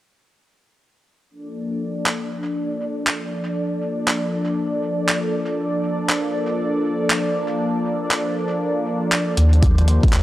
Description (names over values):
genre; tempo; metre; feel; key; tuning
IDM; 119 BPM; 4/4; swing 62% on 16ths; Bb major; A4 = 439 Hz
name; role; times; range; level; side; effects
phased analog pad; sustained chords; 1.3-10.2 s; Eb3 to D5; -23 LUFS; equal; phaser, chorus, vintage 12-bit sampler grit
bubbling stepped-filter texture; texture; 1.3-10.2 s; D4 to D5; -28 LUFS; equal; chorus, built-in reverb, sidechain pumping
jungle sampler-style drum kit; drums; 2.1-10.2 s; handclaps, hi-hat; -22 LUFS; equal; none
dark detuned saw bass; bass; 9.4-10.2 s; Eb2; -14 LUFS; equal; none
electronic kick drum; drums; 9.6-10.1 s; none; -16 LUFS; equal; none
room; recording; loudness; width
moderate lush hall reverb, RT60 2.6 s; dry, gritty hardware recording, cassette tape; -19 LUFS; side -15 dB against mid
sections
1.3-10.2 A section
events
none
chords
1.3 Bbmaj7; 9.4 Eb69